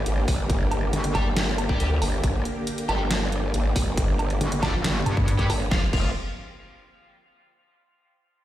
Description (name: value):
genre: heavy wobble dubstep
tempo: 138 BPM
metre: 4/4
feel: half-time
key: F dorian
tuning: A4 = 440 Hz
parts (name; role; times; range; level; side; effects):
- supersaw pad; sustained chords; 0.0-5.9 s; D3 to G4; -30 LUFS; equal; sidechain pumping
- growl bass; bass; 0.0-6.1 s; F1 to D2; -25 LUFS; equal; chorus, overdrive
- dubstep drum kit; drums; 0.1-6.0 s; crash cymbal, hi-hat, snare drum, woodblock; -30 LUFS; right 1 dB; overdrive
- electronic kick drum; drums; 0.3-6.0 s; none; -25 LUFS; equal; overdrive
- metallic wobble bass; bass; 0.9-1.1, 4.4-5.5 s; G1 to G2; -24 LUFS; equal; distortion, chorus, overdrive
- distorted electric guitar; stabs; 1.1-6.1 s; F4 to G5; -35 LUFS; left 2 dB; distortion, dub echo
room: light reverb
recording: played on a big sound system in a bare room, stone room reverb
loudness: -22 LUFS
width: side -13 dB against mid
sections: 0.0-5.7 A section; 5.7-7.5 B section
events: drop 0.0-5.7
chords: 0.0 Gm; 5.7 Fm